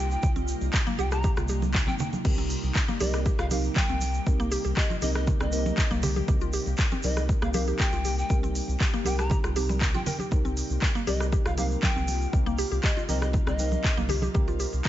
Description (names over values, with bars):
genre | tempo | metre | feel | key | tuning
afro house | 119 BPM | 4/4 | straight | C minor | A4 = 440 Hz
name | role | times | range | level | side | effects
breathy reedy pan flute | melody | 0.0-14.0 s | Eb5 to Bb5 | -36 LUFS | left 2 dB | dub echo
ethereal airy pad | sustained chords | 0.0-14.9 s | C3 to G4 | -37 LUFS | left 1 dB | ensemble chorus, built-in reverb, phaser, sidechain pumping
mallet-like synth pluck | arpeggios | 0.0-14.7 s | G3 to Bb4 | -34 LUFS | left 1 dB | chorus, sidechain pumping, dub echo
round analog bass | bass | 0.0-14.8 s | G1 to C2 | -29 LUFS | equal | sidechain pumping
tube shaker | percussion | 0.1-14.9 s | none | -42 LUFS | right 3 dB | none
electronic kick drum | drums | 0.2-14.9 s | none | -26 LUFS | equal | overdrive
congas | percussion | 0.2-14.8 s | none | -34 LUFS | right 2 dB | none
afro-pop drum kit | drums | 0.7-14.9 s | crash cymbal, handclaps, hi-hat, rim click | -32 LUFS | equal | none
deep mellow chord stab | stabs | 2.2-14.9 s | C4 to Bb4 | -36 LUFS | right 2 dB | chorus, sidechain pumping, dub echo
room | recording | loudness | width
little or no reverb | nothing above 7.8 kHz | -24 LUFS | side -13 dB against mid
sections
0.0-14.9 A section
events
none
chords
0.0 Cm7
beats
| 0.23 0.73 1.24 1.74 | 2.25 2.75 3.26 3.76 | 4.26 4.77 5.27 5.78 | 6.28 6.79 7.29 7.79 | 8.30 8.80 9.31 9.81 | 10.31 10.82 11.32 11.83 | 12.33 12.84 13.34 13.84 | 14.35 14.85